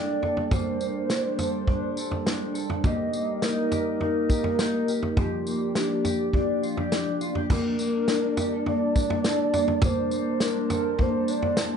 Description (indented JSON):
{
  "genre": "dream pop",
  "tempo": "103 BPM",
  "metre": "4/4",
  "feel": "straight",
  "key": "G minor",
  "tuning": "A4 = 440 Hz",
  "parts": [
    { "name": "warbly nostalgic lead", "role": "melody", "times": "0.0-11.8 s", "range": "G4 to Eb5", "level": "-29 LUFS", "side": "equal", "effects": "chorus, ping-pong delay" },
    { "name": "warbly tape-like pad", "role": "sustained chords", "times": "0.0-11.8 s", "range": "F3 to A5", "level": "-29 LUFS", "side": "right 1 dB", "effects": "chorus, built-in reverb" },
    { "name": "mellow electric guitar", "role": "arpeggios", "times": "0.0-11.8 s", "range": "F3 to A4", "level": "-29 LUFS", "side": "left 2 dB", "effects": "lush chorus, ping-pong delay" },
    { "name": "vintage drum kit", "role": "drums", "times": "0.2-11.7 s", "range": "crash cymbal, kick drum, snare drum, tambourine, toms", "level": "-28 LUFS", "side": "right 1 dB", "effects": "none" }
  ],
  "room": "wet studio ambience, RT60 0.5 s",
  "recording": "nothing above 10.9 kHz",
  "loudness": "-23 LUFS",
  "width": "side -7 dB against mid",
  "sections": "0.0-7.5 A section; 7.5-11.8 B section",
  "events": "none",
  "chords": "0.0 Gmadd9; 2.8 Eb; 5.2 Gm7; 7.5 Gmadd9"
}